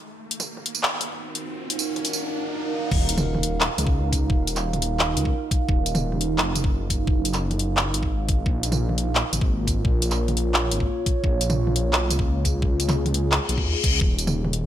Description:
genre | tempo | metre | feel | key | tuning
half-time drum and bass | 173 BPM | 4/4 | half-time | Eb minor | A4 = 441 Hz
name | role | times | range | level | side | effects
dark analog pad | sustained chords | 1.0-14.7 s | Bb3 to Gb5 | -29 LUFS | right 3 dB | chorus, phaser, sidechain pumping
riser, sub drop and reverse cymbal | sound effects | 0.0-4.3, 13.4-14.0 s | none | -31 LUFS | left 3 dB | none
drum and bass drum kit | drums | 0.3-14.6 s | crash cymbal, handclaps, hi-hat, tambourine, toms | -24 LUFS | equal | high-pass filter on snare, high-pass filter on hats, high-pass filter on toms, high-pass filter on perc, high-pass filter on cymbals, high-pass filter on room
dark detuned saw bass | bass | 2.9-14.7 s | Eb1 to Eb2 | -25 LUFS | equal | tube saturation
electronic kick drum | drums | 2.9-14.1 s | none | -23 LUFS | equal | none
room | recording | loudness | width
light reverb, digital ambience | bright 1980s-style digital production | -21 LUFS | side -11 dB against mid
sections
0.0-2.9 A section; 2.9-14.7 B section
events
build-up 0.0-2.9; riser 0.0-2.9; filter sweep on analog synth pad 0.0-2.9; drop 2.9-14.7; impact 2.9-4.3; reverse cymbal 13.4-14.0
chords
0.0 Ebm; 2.9 Ebm7; 8.5 Bbm; 14.0 Eb7(no3)

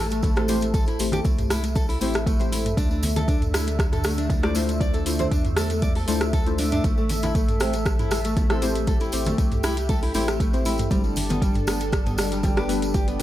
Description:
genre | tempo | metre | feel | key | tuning
afro house | 118 BPM | 4/4 | straight | A minor | A4 = 440 Hz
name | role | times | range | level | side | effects
warm analog pad | sustained chords | 0.0-13.2 s | D3 to E5 | -30 LUFS | equal | chorus, sidechain pumping
nylon-string guitar | arpeggios | 0.0-13.2 s | B2 to D5 | -29 LUFS | equal | sidechain pumping, tape echo
warm sub bass | bass | 0.0-13.2 s | G1 to E2 | -28 LUFS | equal | sidechain pumping
afro-pop drum kit | drums | 0.1-13.2 s | hi-hat, rim click, toms | -29 LUFS | right 1 dB | none
tambourine | percussion | 0.1-13.2 s | none | -37 LUFS | right 1 dB | none
electronic kick drum | drums | 0.2-13.1 s | none | -23 LUFS | equal | overdrive
congas | percussion | 0.2-13.1 s | none | -33 LUFS | left 2 dB | none
deep mellow chord stab | stabs | 0.4-13.2 s | G3 to C5 | -29 LUFS | left 3 dB | chorus, sidechain pumping, tape echo
room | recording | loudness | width
little or no reverb | none | -20 LUFS | side -13 dB against mid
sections
0.0-13.2 A section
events
none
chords
0.0 Am7; 2.8 Dm7; 6.8 Am7; 10.9 G

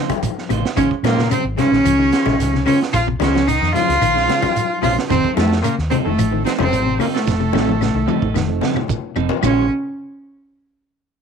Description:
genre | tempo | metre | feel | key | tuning
afrobeat | 111 BPM | 4/4 | straight | Bb minor | A4 = 438 Hz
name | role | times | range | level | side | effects
clear cello | melody | 0.0-9.7 s | F3 to F4 | -19 LUFS | equal | none
bright trumpet | second line | 0.0-9.7 s | F4 to F5 | -28 LUFS | right 14 dB | none
clear baritone saxophone | second line | 0.0-9.7 s | F2 to F3 | -30 LUFS | left 12 dB | none
percussive tonewheel organ | accompaniment | 0.0-9.7 s | Eb3 to F4 | -27 LUFS | right 15 dB | slow rotary speaker, chorus vibrato
electric guitar at the edge of break-up | arpeggios | 0.0-9.6 s | Bb2 to F3 | -24 LUFS | left 12 dB | none
electric guitar through a small old amp | stabs | 0.0-9.7 s | Ab3 to C5 | -25 LUFS | right 15 dB | none
vintage drum kit | drums | 0.1-9.6 s | hi-hat, kick drum, snare drum, toms | -26 LUFS | right 6 dB | none
claves | percussion | 0.1-9.6 s | none | -33 LUFS | left 16 dB | none
congas | percussion | 0.1-9.6 s | none | -25 LUFS | left 13 dB | none
shekere | percussion | 0.2-9.6 s | none | -26 LUFS | right 6 dB | none
hollow-body short-scale fingered electric bass | bass | 0.5-9.7 s | F1 to Bb2 | -22 LUFS | equal | none
room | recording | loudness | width
light reverb, small room ambience | 1960s-style stereo with parts hard left and right | -15 LUFS | side -6 dB against mid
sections
0.0-9.4 A section; 9.4-11.2 B section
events
drum fill 7.3-9.4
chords
0.0 F7; 0.8 Bbm9; 5.1 F7; 9.4 Bbm9

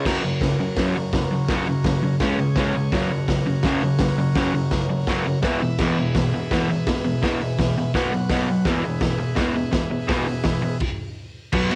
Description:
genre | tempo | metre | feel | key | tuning
garage rock duo or trio | 167 BPM | 4/4 | straight | F# mixolydian | A4 = 440 Hz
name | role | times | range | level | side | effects
overdriven combo organ | sustained chords | 0.0-10.8 s | C#4 to F#5 | -34 LUFS | equal | phaser, cassette tape
crunchy overdriven guitar | riff | 0.0-11.8 s | E2 to C#4 | -24 LUFS | equal | cassette tape
raw garage drum kit | drums | 0.1-11.8 s | crash cymbal, hi-hat, kick drum, ride cymbal, snare drum | -27 LUFS | equal | cassette tape
room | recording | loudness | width
light reverb | home recording on cassette | -22 LUFS | mono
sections
0.1-11.5 A section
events
stop 10.8-11.5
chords
0.1 F#; 2.2 C#5; 2.9 F#; 5.4 E5; 5.8 E; 7.9 B5; 8.7 E; 11.2 N.C.

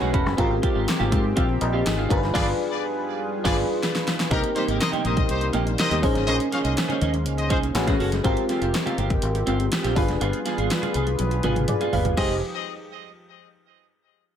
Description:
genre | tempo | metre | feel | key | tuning
polished 1980s jazz-funk pop | 122 BPM | 4/4 | straight | F minor | A4 = 441 Hz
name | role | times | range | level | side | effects
FM electric piano | accompaniment | 0.0-12.4 s | C4 to B5 | -27 LUFS | left 1 dB | wide subtle chorus
chorused pulse-width pad | sustained chords | 0.0-12.4 s | C3 to B4 | -31 LUFS | equal | none
twelve-string electric guitar | riff | 0.0-12.3 s | Ab3 to B4 | -28 LUFS | right 3 dB | lush chorus
fingered electric bass | bass | 0.0-12.4 s | E1 to Ab2 | -26 LUFS | equal | none
congas | percussion | 0.0-12.4 s | none | -38 LUFS | left 2 dB | none
pop drum kit | drums | 0.1-12.3 s | crash cymbal, hi-hat, kick drum, snare drum, toms | -26 LUFS | equal | gated reverb
clear horn section | second line | 2.3-7.6, 12.2-12.3 s | C4 to F5 | -30 LUFS | left 3 dB | ping-pong delay
room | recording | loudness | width
digital ambience | none | -20 LUFS | side -9 dB against mid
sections
0.0-4.3 A section; 4.3-12.2 B section; 12.2-14.1 C section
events
FM electric piano fill 0.0-0.4; band accent 2.3-4.3; drum fill 3.3-4.3, 11.2-12.2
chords
0.4 Abmaj13; 2.1 G7b9; 4.3 Cm7; 6.0 Bbm11; 7.8 Amaj13; 8.2 Abmaj13; 10.0 G7b9; 12.2 Fm9

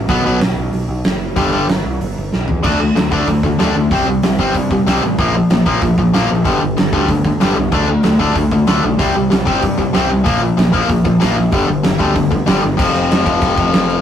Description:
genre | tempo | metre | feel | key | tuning
punk rock | 189 BPM | 4/4 | straight | unclear | A4 = 440 Hz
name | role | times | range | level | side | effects
overdriven picked electric bass | bass | 0.0-14.0 s | F1 to G2 | -21 LUFS | right 1 dB | none
cranked stack guitar | riff | 0.1-12.8 s | G2 to D4 | -20 LUFS | right 4 dB | overdrive
distorted electric guitar | riff | 0.1-14.0 s | F2 to D4 | -15 LUFS | left 3 dB | overdrive
big rock drum kit | drums | 0.1-14.0 s | crash cymbal, hi-hat, kick drum, snare drum, toms | -18 LUFS | right 1 dB | none
room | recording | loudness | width
light reverb | rough rehearsal-room recording, warm saturation | -12 LUFS | side -9 dB against mid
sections
0.0-2.6 A section; 2.6-12.8 B section; 12.8-14.0 C section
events
drum fill 2.3-2.6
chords
0.1 B5; 1.4 G5; 2.6 D5; 3.9 C5; 5.2 Bb5; 6.5 G5; 7.7 D5; 9.0 C5; 10.3 Bb5; 11.5 G5; 12.8 F5

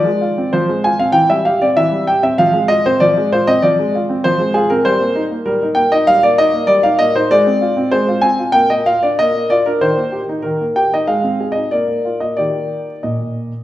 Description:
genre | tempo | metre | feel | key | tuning
classical-period piano sonatina | 96 BPM | 4/4 | rubato | Eb major | A4 = 440 Hz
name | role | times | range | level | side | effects
warm baby grand piano | solo | 0.0-13.6 s | Bb2 to Ab5 | -12 LUFS | equal | none
room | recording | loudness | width
wet recital hall reverb, RT60 1.7 s | recorded in a church or concert hall | -12 LUFS | side -14 dB against mid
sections
0.0-13.6 A section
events
none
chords
0.0 Fm; 1.2 C/E; 2.4 Fm; 4.8 Eb/G; 7.3 Fm/Ab; 8.6 Bb; 9.8 Eb; 11.1 Ab; 11.7 Bb; 12.4 Eb

